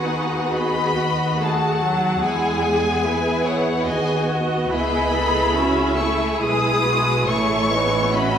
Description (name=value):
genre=classical, slow romantic movement for string orchestra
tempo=63-74 BPM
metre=3/4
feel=rubato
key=E major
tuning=A4 = 441 Hz
part: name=rich chamber violin section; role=melody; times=0.0-8.4 s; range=F#5 to D#6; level=-23 LUFS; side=left 3 dB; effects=none
part: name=rich chamber violin section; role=second line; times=0.0-8.4 s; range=E4 to F#5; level=-25 LUFS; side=left 2 dB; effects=none
part: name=rich studio viola section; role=accompaniment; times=0.0-8.4 s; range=F#3 to G#4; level=-23 LUFS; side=right 1 dB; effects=none
part: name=warm chamber cello section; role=bass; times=0.0-8.4 s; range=D#4 to G#4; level=-27 LUFS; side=right 2 dB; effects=none
part: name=warm studio double bass section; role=bass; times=0.0-8.4 s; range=A1 to E2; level=-26 LUFS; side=right 2 dB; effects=none
room=wet recital hall reverb, RT60 1.3 s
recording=recorded in a church or concert hall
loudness=-18 LUFS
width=side -8 dB against mid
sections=0.0-8.4 A section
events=none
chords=0.0 B7/D#; 2.2 E; 4.7 C#m; 7.3 Amaj7